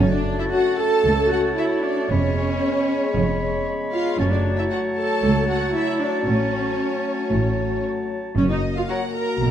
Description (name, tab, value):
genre	cinematic, playful, whimsical film cue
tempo	115 BPM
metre	4/4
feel	straight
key	F# minor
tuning	A4 = 440 Hz
part	bright clarinet	second line	0.0-9.1 s	C#5	-32 LUFS	right 1 dB	none
part	rich studio violin section	second line	0.0-9.5 s	C#5 to Bb5	-31 LUFS	left 1 dB	none
part	warm oboe	second line	0.0-9.1 s	A5 to B5	-30 LUFS	right 1 dB	none
part	mellow bassoon	accompaniment	0.0-9.1 s	Gb3 to A3	-31 LUFS	equal	none
part	warm studio viola section	accompaniment	0.0-9.5 s	C#4 to Bb4	-24 LUFS	right 1 dB	none
part	dark French horn section	sustained chords	0.0-9.5 s	A3 to G#4	-27 LUFS	left 4 dB	none
part	clear studio double bass section	bass	0.0-9.5 s	E#1 to C#2	-26 LUFS	right 2 dB	none
part	rich studio cello section	bass	0.0-9.5 s	C#2 to B2	-25 LUFS	right 2 dB	none
part	clear studio violin section	melody	0.5-9.0 s	Bb4 to C#5	-41 LUFS	left 3 dB	none
room	wet scoring stage reverb, RT60 1.5 s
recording	dark, warm production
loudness	-19 LUFS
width	side -10 dB against mid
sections	0.0-9.5 A section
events	none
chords	0.0 F#m; 2.1 C#7/E#; 4.2 F#m; 6.3 F#m/A; 8.4 Gb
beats	0.52 1.05 1.58 | 2.10 2.63 3.15 3.67 | 4.20 4.72 5.24 5.76 | 6.28 6.80 7.32 7.85 | 8.37 8.89 9.41